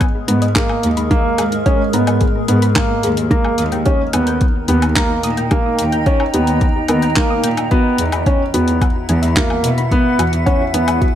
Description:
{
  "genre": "piano and strings electronica",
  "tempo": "109 BPM",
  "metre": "4/4",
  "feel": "straight",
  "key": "G# minor",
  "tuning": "A4 = 440 Hz",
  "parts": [
    { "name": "granular cloud pad", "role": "sustained chords", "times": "0.0-11.2 s", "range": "G#3 to A#5", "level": "-22 LUFS", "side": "right 1 dB", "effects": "built-in reverb" },
    { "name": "soft round pluck", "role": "arpeggios", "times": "0.0-11.1 s", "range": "F#4 to G6", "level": "-28 LUFS", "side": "left 2 dB", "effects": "chorus, sidechain pumping, ping-pong delay" },
    { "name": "felt-muted upright piano", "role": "riff", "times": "0.0-11.0 s", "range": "A#3 to C#4", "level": "-17 LUFS", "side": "equal", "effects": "ping-pong delay" },
    { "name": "deep house drum kit", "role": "drums", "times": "0.0-11.1 s", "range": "handclaps, hi-hat, woodblock", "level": "-23 LUFS", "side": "left 2 dB", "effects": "overdrive" },
    { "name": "electronic kick drum", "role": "drums", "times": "0.0-11.1 s", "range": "none", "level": "-17 LUFS", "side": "equal", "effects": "overdrive" },
    { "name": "dark symphonic cello section", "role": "bass", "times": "0.3-10.9 s", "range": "D#2 to B2", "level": "-20 LUFS", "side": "equal", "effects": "sidechain pumping" }
  ],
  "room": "light reverb, digital ambience",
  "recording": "none",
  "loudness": "-13 LUFS",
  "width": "side -10 dB against mid",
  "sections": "0.0-11.2 A section",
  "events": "none",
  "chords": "0.0 G#madd9; 3.3 D#; 7.7 Eadd9"
}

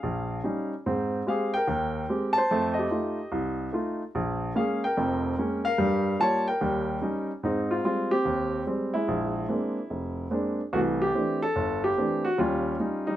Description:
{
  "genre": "solo jazz",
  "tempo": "146 BPM",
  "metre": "4/4",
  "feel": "swing 65% on 8ths",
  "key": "unclear",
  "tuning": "A4 = 440 Hz",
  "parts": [
    { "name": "warm grand piano", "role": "solo", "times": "0.0-13.2 s", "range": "F1 to A5", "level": "-25 LUFS", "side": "equal", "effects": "none" }
  ],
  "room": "moderate club reverb, RT60 0.5 s",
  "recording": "none",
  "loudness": "-25 LUFS",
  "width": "side -12 dB against mid",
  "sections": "0.0-7.4 A section; 7.4-13.2 B section",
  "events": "none",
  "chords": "0.0 Eb7; 0.9 Abmaj7; 2.5 F7; 4.1 Bbm7; 5.8 Gm7b5; 6.6 Eb7; 7.4 Abmaj7; 9.1 Bb9; 10.7 C69; 12.4 Eb7"
}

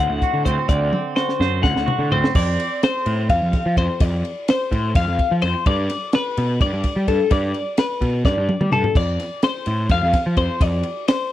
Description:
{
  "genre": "math rock and midwest emo",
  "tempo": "254 BPM (eighths)",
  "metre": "7/8",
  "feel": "straight",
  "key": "unclear",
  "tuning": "A4 = 436 Hz",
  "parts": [
    { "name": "twangy electric guitar", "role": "accompaniment", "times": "0.0-4.0 s", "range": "A2 to C5", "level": "-26 LUFS", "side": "right 9 dB", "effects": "none" },
    { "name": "twelve-string electric guitar", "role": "arpeggios", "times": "0.0-11.3 s", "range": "A4 to F#5", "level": "-22 LUFS", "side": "left 4 dB", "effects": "phaser" },
    { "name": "fuzz picked electric bass", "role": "bass", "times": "0.0-10.8 s", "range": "D2 to G3", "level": "-21 LUFS", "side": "equal", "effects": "overdrive" },
    { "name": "compact cocktail drum kit", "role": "drums", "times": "0.2-11.2 s", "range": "crash cymbal, hi-hat, kick drum, ride cymbal, snare drum, toms", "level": "-21 LUFS", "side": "right 1 dB", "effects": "none" }
  ],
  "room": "studio reverb",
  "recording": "dry, close 1970s-style studio recording",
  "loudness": "-17 LUFS",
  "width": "side -13 dB against mid",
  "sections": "0.0-2.4 A section; 2.4-11.3 B section",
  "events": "drum fill 0.9-2.4, 8.3-9.0",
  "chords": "0.0 D7; 2.4 F; 5.7 Gadd9; 9.0 F5"
}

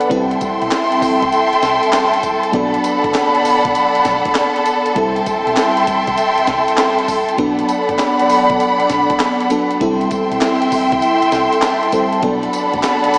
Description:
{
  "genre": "R&B, new jack swing",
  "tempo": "99 BPM",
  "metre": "4/4",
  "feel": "swing 67% on 16ths",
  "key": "unclear",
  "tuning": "A4 = 440 Hz",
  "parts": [
    { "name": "FM electric piano with soft pad layer", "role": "accompaniment", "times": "0.0-13.2 s", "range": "F#3 to C6", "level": "-21 LUFS", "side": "equal", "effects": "chorus, phaser, shimmer reverb, slapback echo" },
    { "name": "warm studio string section", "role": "sustained chords", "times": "0.0-13.2 s", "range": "A4 to C6", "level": "-17 LUFS", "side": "equal", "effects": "shimmer reverb" },
    { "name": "breakbeat sampler-style drum kit", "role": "drums", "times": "0.0-13.2 s", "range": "handclaps, hi-hat, kick drum, snare drum, tambourine", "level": "-26 LUFS", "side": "equal", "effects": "none" },
    { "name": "hollow-body short-scale fingered electric bass", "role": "bass", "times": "0.1-13.2 s", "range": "A1 to C2", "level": "-37 LUFS", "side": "equal", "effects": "none" }
  ],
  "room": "wet lush hall reverb, RT60 1.9 s",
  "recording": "big arena sound, small speaker sound",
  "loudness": "-15 LUFS",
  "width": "mono",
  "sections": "0.0-13.2 A section",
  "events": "FM electric piano fill 11.0-12.2",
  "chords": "0.1 C6; 2.5 Bm7; 5.0 C6; 7.4 Bm7; 9.8 C6; 12.2 Bm7"
}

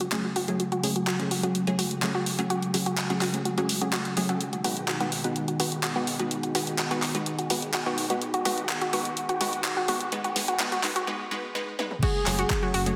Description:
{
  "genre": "progressive house",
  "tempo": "126 BPM",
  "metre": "4/4",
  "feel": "straight",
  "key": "unclear",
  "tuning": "A4 = 438 Hz",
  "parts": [
    { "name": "lush unison pad", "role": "sustained chords", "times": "0.0-13.0 s", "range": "B2 to G#4", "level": "-35 LUFS", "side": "equal", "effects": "chorus, sidechain pumping" },
    { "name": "analog pluck", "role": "arpeggios", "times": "0.0-12.8 s", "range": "F#4", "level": "-32 LUFS", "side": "equal", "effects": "chorus, sidechain pumping, digital delay" },
    { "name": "round analog bass", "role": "bass", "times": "0.0-12.9 s", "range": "D#1 to C#2", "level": "-42 LUFS", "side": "equal", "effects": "none" },
    { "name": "deep house drum kit", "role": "drums", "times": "0.0-13.0 s", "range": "crash cymbal, handclaps, hi-hat, ride cymbal, toms", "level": "-32 LUFS", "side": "equal", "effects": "sidechain pumping on hats, sidechain pumping on toms, sidechain pumping on cymbals" },
    { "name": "unison pluck", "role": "stabs", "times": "0.1-13.0 s", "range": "F#3 to C#5", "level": "-35 LUFS", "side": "equal", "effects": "sidechain pumping, digital delay" },
    { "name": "unison lead", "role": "melody", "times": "12.0-12.6 s", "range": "G#4", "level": "-34 LUFS", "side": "equal", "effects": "digital delay" },
    { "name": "soft synth bell", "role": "second line", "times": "12.0-12.6 s", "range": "G#4", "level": "-39 LUFS", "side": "equal", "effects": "none" },
    { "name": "electronic kick drum", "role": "drums", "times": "12.0-12.6 s", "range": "none", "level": "-30 LUFS", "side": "equal", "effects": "none" }
  ],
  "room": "wet recital hall reverb, RT60 1.6 s",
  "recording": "dense, heavily limited modern master, high-pass filter",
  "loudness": "-27 LUFS",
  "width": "mono",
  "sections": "0.0-12.0 A section",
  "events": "build-up 0.0-12.0; filter sweep on synth arpeggio sound 0.0-12.0; filter sweep on synth pluck 0.0-12.0; filter sweep on analog synth pad 0.0-12.0; break 11.1-12.0; drum fill 11.8",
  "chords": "0.0 F#madd9; 4.4 G#m; 12.0 F#madd9"
}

